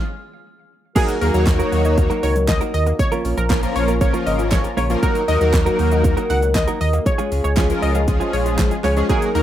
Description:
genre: dance-pop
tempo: 118 BPM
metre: 4/4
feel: straight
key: Eb minor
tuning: A4 = 441 Hz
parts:
  - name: analog pluck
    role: melody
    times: 1.0-9.4 s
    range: Ab4 to Gb5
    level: -24 LUFS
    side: right 1 dB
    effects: chorus
  - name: big bright polysynth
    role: accompaniment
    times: 1.0-9.4 s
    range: F3 to Db5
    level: -22 LUFS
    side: left 1 dB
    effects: ensemble chorus, sidechain pumping
  - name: dark French horn section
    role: sustained chords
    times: 1.0-9.4 s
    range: Db3 to Bb4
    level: -25 LUFS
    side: left 2 dB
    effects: sidechain pumping
  - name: wide unison pluck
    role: arpeggios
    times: 1.0-9.3 s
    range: Db3 to F5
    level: -30 LUFS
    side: left 3 dB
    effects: sidechain pumping, ping-pong delay
  - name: direct-recorded clean electric guitar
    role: riff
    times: 1.0-9.4 s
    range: Ab3 to Bb4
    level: -25 LUFS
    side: right 4 dB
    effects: wide subtle chorus
  - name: pop drum kit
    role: drums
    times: 1.0-9.4 s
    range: crash cymbal, handclaps, hi-hat, kick drum, shaker, snare drum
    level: -21 LUFS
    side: equal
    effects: none
  - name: sub bass with octave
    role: bass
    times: 1.2-9.4 s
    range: Ab1 to Eb2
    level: -20 LUFS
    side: equal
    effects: sidechain pumping
  - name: group handclap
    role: percussion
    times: 1.5-8.7 s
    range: none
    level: -33 LUFS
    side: right 6 dB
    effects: none
room: digital ambience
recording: rough home demo mix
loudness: -16 LUFS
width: side -11 dB against mid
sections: 1.0-9.4 A section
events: stop 0.0-1.0; drop 1.0-9.4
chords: 0.0 N.C.; 1.0 Ebm; 3.0 Bbm; 5.0 Ebm; 7.1 Db

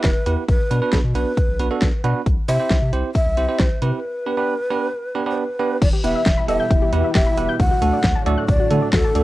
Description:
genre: synth-pop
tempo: 135 BPM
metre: 4/4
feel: straight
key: E minor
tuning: A4 = 436 Hz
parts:
  - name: breathy long shakuhachi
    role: melody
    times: 0.0-9.2 s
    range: A4 to F#5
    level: -23 LUFS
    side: equal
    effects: tape echo
  - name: bell-like tine electric piano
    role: accompaniment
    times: 0.0-9.2 s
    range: A3 to C5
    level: -23 LUFS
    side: right 5 dB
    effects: medium stereo tremolo, cassette tape
  - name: round analog bass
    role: bass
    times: 0.0-9.2 s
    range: E1 to D3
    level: -22 LUFS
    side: equal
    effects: none
  - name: pop drum kit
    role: drums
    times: 0.0-9.2 s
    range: crash cymbal, hi-hat, kick drum, snare drum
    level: -19 LUFS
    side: equal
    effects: cassette tape
  - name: soft string machine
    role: sustained chords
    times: 5.8-9.2 s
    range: A2 to G4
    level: -28 LUFS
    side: left 1 dB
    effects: phaser, ensemble chorus, cassette tape
  - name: soft round pluck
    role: arpeggios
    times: 5.8-9.2 s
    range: D3 to G6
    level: -26 LUFS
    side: left 6 dB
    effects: chorus, cassette tape, tape echo
room: light reverb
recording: home recording on cassette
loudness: -17 LUFS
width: side -16 dB against mid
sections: 0.0-5.8 A section; 5.8-9.2 B section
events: break 4.0-5.8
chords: 0.5 Bm; 2.3 C; 4.0 G; 5.8 Em; 7.6 D

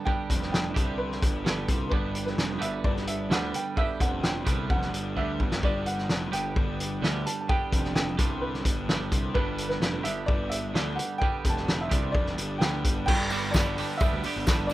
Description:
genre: indie rock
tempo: 129 BPM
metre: 4/4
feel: straight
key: G major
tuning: A4 = 440 Hz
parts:
  - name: bright upright piano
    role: melody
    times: 0.0-14.7 s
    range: B4 to A5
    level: -33 LUFS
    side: equal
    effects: digital delay
  - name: twangy electric guitar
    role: riff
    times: 0.0-14.7 s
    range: G2 to G4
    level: -33 LUFS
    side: right 7 dB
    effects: lush chorus
  - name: loose indie drum kit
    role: drums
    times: 0.1-14.7 s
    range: crash cymbal, hi-hat, kick drum, snare drum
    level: -27 LUFS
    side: equal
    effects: none
  - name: overdriven electric guitar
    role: riff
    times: 0.3-14.7 s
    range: F2 to D4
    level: -36 LUFS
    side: left 5 dB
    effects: none
  - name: fuzz picked electric bass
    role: bass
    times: 0.3-14.7 s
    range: F1 to D2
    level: -35 LUFS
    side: equal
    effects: overdrive
  - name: tonewheel organ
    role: sustained chords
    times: 13.1-14.7 s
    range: none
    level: barely audible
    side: none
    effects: none
  - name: tambourine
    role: percussion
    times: 13.3-14.7 s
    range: none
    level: -45 LUFS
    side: left 5 dB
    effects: none
room: little or no reverb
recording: rough home demo mix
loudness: -25 LUFS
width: side -16 dB against mid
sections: 0.0-13.1 A section; 13.1-14.7 B section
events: drum fill 5.2-5.6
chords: 0.0 G

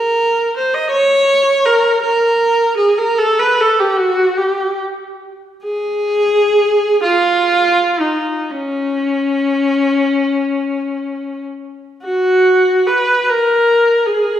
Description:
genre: classical, free, expressive piece for unaccompanied viola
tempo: 23-56 BPM (dotted quarters)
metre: 6/8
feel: rubato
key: Db major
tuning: A4 = 438 Hz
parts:
  - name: rich viola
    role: solo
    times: 0.0-14.4 s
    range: Db4 to Eb5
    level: -13 LUFS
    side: equal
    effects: none
room: wet scoring stage reverb, RT60 2.0 s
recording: heard from further back in the room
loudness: -12 LUFS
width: side -10 dB against mid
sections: 0.0-12.0 A section; 12.0-14.4 B section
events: none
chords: none

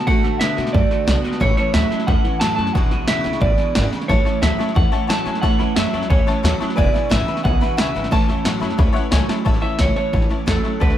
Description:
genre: rockabilly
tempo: 179 BPM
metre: 4/4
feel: straight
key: A major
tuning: A4 = 440 Hz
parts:
  - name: electric guitar through a small old amp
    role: melody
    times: 0.0-11.0 s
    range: A4 to A5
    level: -23 LUFS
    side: right 1 dB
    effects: plate reverb, tape echo
  - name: picked steel-string acoustic guitar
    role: accompaniment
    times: 0.0-11.0 s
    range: E2 to F#4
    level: -27 LUFS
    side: left 4 dB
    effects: none
  - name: electric guitar through a small old amp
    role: riff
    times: 0.0-11.0 s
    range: E2 to B3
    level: -24 LUFS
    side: right 4 dB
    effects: analog chorus
  - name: upright bass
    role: bass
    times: 0.1-11.0 s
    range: E1 to B2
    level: -22 LUFS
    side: equal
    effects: none
  - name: punchy analog drum machine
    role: drums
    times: 0.1-10.9 s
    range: hi-hat, kick drum, snare drum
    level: -20 LUFS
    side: equal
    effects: none
  - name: tack piano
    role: accompaniment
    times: 4.1-10.9 s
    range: B4 to B5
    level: -28 LUFS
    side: left 8 dB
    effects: plate reverb
room: light reverb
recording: none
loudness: -16 LUFS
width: side -11 dB against mid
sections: 0.0-9.5 A section; 9.5-11.0 B section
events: honky-tonk piano fill 9.0-9.5; drum fill 9.3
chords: 0.0 D; 1.4 A; 2.8 E7; 4.1 A; 6.8 E7; 8.1 A

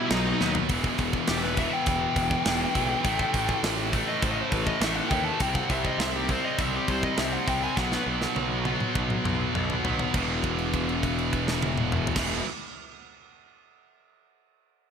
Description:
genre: heavy metal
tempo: 102 BPM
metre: 4/4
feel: straight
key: E harmonic minor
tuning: A4 = 439 Hz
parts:
  - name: high-gain lead guitar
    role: melody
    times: 0.0-8.0 s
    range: D#4 to A5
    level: -30 LUFS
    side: left 3 dB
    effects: distortion, ping-pong delay
  - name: high-gain lead guitar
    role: second line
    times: 0.0-0.5 s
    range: F#3 to G3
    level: -35 LUFS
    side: equal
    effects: none
  - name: distorted electric guitar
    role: riff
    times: 0.0-12.4 s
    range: E2 to C4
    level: -31 LUFS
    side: left 10 dB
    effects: overdrive
  - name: scooped high-gain guitar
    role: riff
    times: 0.0-12.4 s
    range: E2 to C4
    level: -30 LUFS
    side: right 11 dB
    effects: distortion
  - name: fuzz picked electric bass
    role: bass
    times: 0.1-12.4 s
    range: E1 to D#2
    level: -32 LUFS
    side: equal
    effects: overdrive
  - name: tight metal drum kit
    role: drums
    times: 0.1-12.3 s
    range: crash cymbal, hi-hat, kick drum, snare drum, toms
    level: -30 LUFS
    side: equal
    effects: none
room: moderate lush hall reverb, RT60 1.7 s, small room ambience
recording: bright 1980s-style digital production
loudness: -24 LUFS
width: side -7 dB against mid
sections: 0.7-10.1 A section; 10.1-12.5 B section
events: drum fill 0.4, 7.8-10.1; lead electric guitar solo 0.7-10.1; held note 10.1-12.2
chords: 0.0 B; 0.7 Em; 3.0 A5; 5.4 C5; 7.8 B5; 10.1 E5

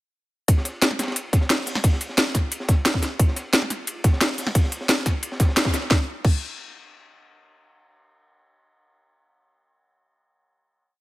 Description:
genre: drum and bass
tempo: 177 BPM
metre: 4/4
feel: straight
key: none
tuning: none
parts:
  - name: crunchy breakbeat drum kit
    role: drums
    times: 0.5-5.9 s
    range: hi-hat, ride cymbal, snare drum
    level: -32 LUFS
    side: equal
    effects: high-pass filter on cymbals, high-pass filter on hats, high-pass filter on snare, high-pass filter on room
  - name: drum and bass drum kit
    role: drums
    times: 0.5-6.3 s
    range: crash cymbal, hi-hat, snare drum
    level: -22 LUFS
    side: equal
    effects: none
  - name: electronic kick drum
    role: drums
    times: 0.5-6.3 s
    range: none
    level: -19 LUFS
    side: equal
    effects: none
room: small room reverb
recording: none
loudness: -19 LUFS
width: side -18 dB against mid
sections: 0.5-5.9 drop; 5.9-7.3 final hit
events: drop 0.5-5.9; band accent 5.6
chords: none

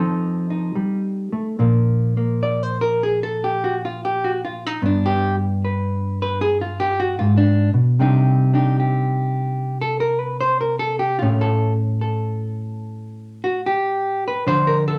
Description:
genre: solo jazz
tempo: 74 BPM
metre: 4/4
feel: swing 68% on 8ths, rubato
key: Bb major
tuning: A4 = 439 Hz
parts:
  - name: hollow-body jazz guitar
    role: solo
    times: 0.0-15.0 s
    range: G2 to D5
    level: -20 LUFS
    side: equal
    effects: none
room: wet studio reverb, RT60 0.7 s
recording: none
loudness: -20 LUFS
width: mono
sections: 0.0-1.6 A section; 1.6-15.0 B section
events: hollow-body jazz guitar solo 1.6-15.0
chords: 0.0 F7; 1.6 Bb5; 4.8 G; 8.0 Cmadd9; 11.2 A; 14.5 Dm7

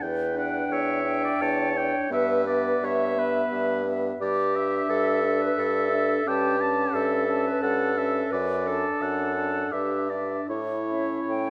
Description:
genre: classical, slow romantic movement for wind quintet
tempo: 87 BPM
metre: 3/4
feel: rubato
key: unclear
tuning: A4 = 438 Hz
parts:
  - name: warm oboe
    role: second line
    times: 0.0-11.5 s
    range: B4 to A5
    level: -33 LUFS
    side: equal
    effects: none
  - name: warm clarinet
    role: accompaniment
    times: 0.0-11.5 s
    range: E4 to E5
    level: -30 LUFS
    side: equal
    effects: none
  - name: clear bassoon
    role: bass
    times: 0.0-11.5 s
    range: E2 to A2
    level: -30 LUFS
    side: equal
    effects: none
  - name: bright concert flute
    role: melody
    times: 0.4-11.5 s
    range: E5 to A5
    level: -36 LUFS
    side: equal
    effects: none
  - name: clear French horn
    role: accompaniment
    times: 0.4-11.5 s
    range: B3 to D4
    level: -35 LUFS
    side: equal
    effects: none
room: moderate concert hall reverb, RT60 2.3 s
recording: none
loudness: -25 LUFS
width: mono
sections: 0.0-11.5 A section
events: none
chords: 0.0 Em7; 2.1 Em/G; 4.2 Em7/G; 6.3 A7/G; 8.3 D/F#; 9.7 Em7/G; 10.5 A

